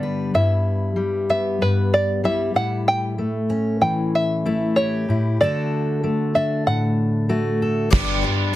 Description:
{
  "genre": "indie folk with a building arrangement",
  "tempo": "95 BPM",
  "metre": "4/4",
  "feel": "straight",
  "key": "unclear",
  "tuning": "A4 = 440 Hz",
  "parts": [
    { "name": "open-back banjo", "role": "melody", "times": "0.0-7.6 s", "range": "B4 to G5", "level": "-22 LUFS", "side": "equal", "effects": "none" },
    { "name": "fingerpicked steel-string acoustic guitar", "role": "accompaniment", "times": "0.0-8.6 s", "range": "G2 to B4", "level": "-20 LUFS", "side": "left 1 dB", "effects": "none" },
    { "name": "picked twelve-string acoustic guitar", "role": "accompaniment", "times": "7.9-8.6 s", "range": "G2 to G4", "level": "-25 LUFS", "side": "left 7 dB", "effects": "none" },
    { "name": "upright bass", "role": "bass", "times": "7.9-8.2 s", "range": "G1", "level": "-26 LUFS", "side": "right 1 dB", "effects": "none" },
    { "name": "natural country drum kit", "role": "drums", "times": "7.9-8.1 s", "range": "crash cymbal, kick drum, snare drum", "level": "-20 LUFS", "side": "right 2 dB", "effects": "soft clipping on snare" }
  ],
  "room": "light reverb",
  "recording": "dense, heavily limited modern master",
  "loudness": "-18 LUFS",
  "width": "side -15 dB against mid",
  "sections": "0.0-7.9 A section",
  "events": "drum fill 7.9-8.6",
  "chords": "0.3 Em/G; 2.6 A7; 5.4 D; 7.9 G",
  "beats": "| 0.35 0.98 1.61 2.24 | 2.87 3.50 4.13 4.76 | 5.40 6.03 6.66 7.29 | 7.92 8.55"
}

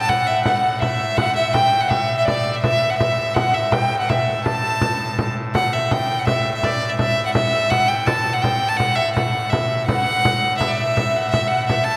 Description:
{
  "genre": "medieval dance",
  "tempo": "165 BPM",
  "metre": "3/4",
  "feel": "straight",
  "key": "unclear",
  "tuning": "A4 = 442 Hz",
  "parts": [
    { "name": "rich violin", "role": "melody", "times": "0.0-12.0 s", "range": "D5 to A5", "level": "-22 LUFS", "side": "equal", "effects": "none" },
    { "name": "warm fiddle", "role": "second line", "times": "0.0-5.4, 9.9-12.0 s", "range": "D5 to A5", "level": "-26 LUFS", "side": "equal", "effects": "none" },
    { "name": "chamber organ, clarinet reed", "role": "drone", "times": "0.0-12.0 s", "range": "A2", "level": "-30 LUFS", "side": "equal", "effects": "none" },
    { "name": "frame drum", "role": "percussion", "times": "0.1-12.0 s", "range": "none", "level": "-25 LUFS", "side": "equal", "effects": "none" }
  ],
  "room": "wet church reverb, RT60 3.1 s",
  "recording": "none",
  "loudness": "-19 LUFS",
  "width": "mono",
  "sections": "0.0-5.5 A section; 5.5-12.0 A section",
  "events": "none",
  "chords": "none",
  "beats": "| 0.08 0.45 0.81 | 1.18 1.54 1.91 | 2.27 2.63 3.00 | 3.36 3.73 4.09 | 4.45 4.82 5.18 | 5.54 5.91 6.27 | 6.63 6.99 7.36 | 7.72 8.08 8.44 | 8.80 9.17 9.53 | 9.89 10.25 10.61 | 10.97 11.33 11.69"
}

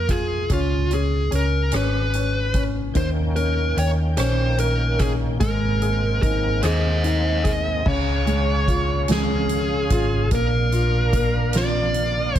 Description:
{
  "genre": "six-eight pop ballad",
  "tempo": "49 BPM (dotted quarters)",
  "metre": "6/8",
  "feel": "straight",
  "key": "Db major",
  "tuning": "A4 = 444 Hz",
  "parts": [
    { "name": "dark smooth lead guitar", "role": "melody", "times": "0.0-12.4 s", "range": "F4 to Eb5", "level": "-24 LUFS", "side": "equal", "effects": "overdrive" },
    { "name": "clear concert grand piano", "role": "accompaniment", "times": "0.0-12.4 s", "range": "Db3 to G5", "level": "-27 LUFS", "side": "left 2 dB", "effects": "none" },
    { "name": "hollow-body short-scale fingered electric bass", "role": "bass", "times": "0.0-12.4 s", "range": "Ab1 to F2", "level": "-22 LUFS", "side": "equal", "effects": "none" },
    { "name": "soft-mallet drum kit", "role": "drums", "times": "0.1-12.4 s", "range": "crash cymbal, hi-hat, kick drum, rim click, snare drum", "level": "-26 LUFS", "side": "equal", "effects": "none" },
    { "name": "overdriven tonewheel organ", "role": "sustained chords", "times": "2.9-12.4 s", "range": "Db3 to G5", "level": "-30 LUFS", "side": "right 1 dB", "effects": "chorus vibrato, slow rotary speaker" }
  ],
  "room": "small room ambience",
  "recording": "none",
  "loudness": "-18 LUFS",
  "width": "side -11 dB against mid",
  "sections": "0.0-7.9 A section; 7.9-12.4 B section",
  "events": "none",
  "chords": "0.5 Db5; 3.0 Eb7; 5.4 Abadd9; 7.9 Db; 10.3 Bb",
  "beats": "| 0.50 1.73 | 2.95 4.18 | 5.41 6.63 | 7.86 9.09 | 10.31 11.54"
}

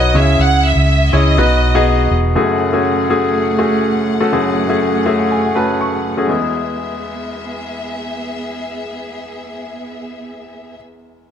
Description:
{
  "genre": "pop",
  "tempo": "122 BPM",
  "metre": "4/4",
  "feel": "straight",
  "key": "E major",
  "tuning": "A4 = 440 Hz",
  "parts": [
    { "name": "warm studio violin section", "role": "melody", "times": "0.0-2.1 s", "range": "D#5 to F#5", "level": "-17 LUFS", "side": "right 1 dB", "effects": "none" },
    { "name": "clear baby grand piano", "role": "accompaniment", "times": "0.0-11.3 s", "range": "F#1 to C#6", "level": "-16 LUFS", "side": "left 1 dB", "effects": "none" },
    { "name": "vintage muted fingered electric bass", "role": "bass", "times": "0.0-2.3 s", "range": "E1 to C#2", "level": "-14 LUFS", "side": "equal", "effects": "none" },
    { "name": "warm studio string section", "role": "sustained chords", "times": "2.4-10.8 s", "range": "A3 to F#5", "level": "-24 LUFS", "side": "right 2 dB", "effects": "none" }
  ],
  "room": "moderate plate reverb, RT60 2.8 s",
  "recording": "none",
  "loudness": "-13 LUFS",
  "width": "side -8 dB against mid",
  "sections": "0.0-2.4 A section; 2.4-6.3 B section; 6.3-10.2 C section",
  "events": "grand piano fill 4.8-6.3",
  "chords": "0.1 C#m; 1.4 B; 2.4 F#madd9; 6.3 E",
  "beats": "| 0.39 0.88 1.38 1.87 | 2.36 2.85 3.34 3.83 | 4.33 4.82 5.31 5.80 | 6.29 6.79 7.28 7.77 | 8.26 8.75 9.25 9.74"
}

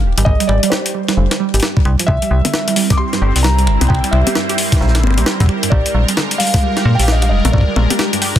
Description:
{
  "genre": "IDM",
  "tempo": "132 BPM",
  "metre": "4/4",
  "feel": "swing 62% on 16ths",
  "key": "unclear",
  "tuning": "A4 = 440 Hz",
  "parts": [
    { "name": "warbly dusty pluck", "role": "arpeggios", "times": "0.0-8.3 s", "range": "G2 to G4", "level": "-21 LUFS", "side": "right 6 dB", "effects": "chorus, dub echo" },
    { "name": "metallic FM bass", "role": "bass", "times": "0.0-7.9 s", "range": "Eb1 to Bb2", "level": "-14 LUFS", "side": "equal", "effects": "none" },
    { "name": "felt-muted upright piano", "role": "melody", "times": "0.2-8.4 s", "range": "C5 to D6", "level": "-21 LUFS", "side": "equal", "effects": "ping-pong delay" },
    { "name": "jungle sampler-style drum kit", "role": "drums", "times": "0.2-8.4 s", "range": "finger snaps, hi-hat, snare drum, toms", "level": "-19 LUFS", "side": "left 2 dB", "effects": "none" },
    { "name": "electronic kick drum", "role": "drums", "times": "0.3-8.4 s", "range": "none", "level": "-14 LUFS", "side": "equal", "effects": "none" },
    { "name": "phased analog pad", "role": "sustained chords", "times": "2.1-8.4 s", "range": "G3 to D5", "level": "-22 LUFS", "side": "left 1 dB", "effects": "phaser, chorus" }
  ],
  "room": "light reverb, digital ambience",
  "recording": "dense, heavily limited modern master",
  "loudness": "-12 LUFS",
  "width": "side -11 dB against mid",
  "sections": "0.0-8.4 A section",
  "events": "none",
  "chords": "0.0 Ab; 2.1 C7; 5.7 Bb7",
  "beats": "| 0.26 0.72 1.17 1.63 | 2.08 2.54 2.99 3.44 | 3.90 4.35 4.81 5.26 | 5.72 6.17 6.63 7.08 | 7.54 7.99"
}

